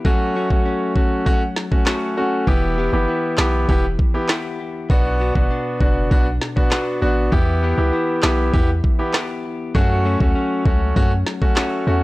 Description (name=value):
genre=dancehall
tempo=99 BPM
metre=4/4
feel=straight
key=E dorian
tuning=A4 = 440 Hz
part: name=bright concert grand piano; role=accompaniment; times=0.0-12.0 s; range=A3 to G4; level=-21 LUFS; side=equal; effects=sidechain pumping
part: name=direct-recorded clean electric guitar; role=arpeggios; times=0.0-12.0 s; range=B2 to G4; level=-26 LUFS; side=left 3 dB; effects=tape echo
part: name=island pop drum kit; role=drums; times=0.0-11.7 s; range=handclaps, kick drum, rim click, snare drum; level=-18 LUFS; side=equal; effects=none
part: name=warm 808-style bass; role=bass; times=2.5-12.0 s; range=E1 to F#2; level=-20 LUFS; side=equal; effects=none
room=digital ambience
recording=dry, gritty hardware recording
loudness=-16 LUFS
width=side -20 dB against mid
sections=0.0-12.0 A section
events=break 0.1-2.5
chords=0.1 F#m; 2.5 Em; 4.9 Bm; 7.3 Em; 9.7 F#m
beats=| 0.05 0.66 1.26 1.87 | 2.48 3.08 3.69 4.29 | 4.90 5.50 6.11 6.72 | 7.32 7.93 8.54 9.14 | 9.75 10.35 10.96 11.57